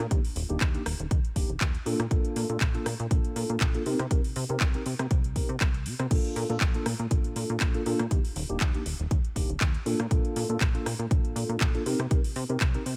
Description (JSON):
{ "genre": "filtered disco house", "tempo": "120 BPM", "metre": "4/4", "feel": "swing 54% on 16ths", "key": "Bb major", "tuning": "A4 = 440 Hz", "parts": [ { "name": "plucky analog bass", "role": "bass", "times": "0.0-12.9 s", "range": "Eb1 to C3", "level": "-35 LUFS", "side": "equal", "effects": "sidechain pumping" }, { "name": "house drum kit", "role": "drums", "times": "0.0-13.0 s", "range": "crash cymbal, handclaps, hi-hat, rim click", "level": "-36 LUFS", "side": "equal", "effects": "sidechain pumping on hats, sidechain pumping on cymbals" }, { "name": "mellow tine electric piano", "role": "accompaniment", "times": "0.1-12.8 s", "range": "Bb3 to Bb4", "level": "-35 LUFS", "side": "equal", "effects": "phaser, sidechain pumping" }, { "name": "electronic kick drum", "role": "drums", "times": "0.1-12.7 s", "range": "none", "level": "-28 LUFS", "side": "equal", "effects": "none" } ], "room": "little or no reverb", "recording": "none", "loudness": "-28 LUFS", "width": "mono", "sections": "0.0-13.0 A section", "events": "none", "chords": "0.1 Ebmaj7; 1.9 Bbmaj7; 3.9 Cm7; 6.1 Bbmaj7; 8.1 Ebmaj7; 9.9 Bbmaj7; 11.9 Cm7", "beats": "| 0.11 0.61 1.11 1.61 | 2.11 2.61 3.11 3.61 | 4.11 4.61 5.11 5.61 | 6.11 6.61 7.11 7.61 | 8.11 8.61 9.11 9.61 | 10.11 10.61 11.11 11.61 | 12.11 12.61" }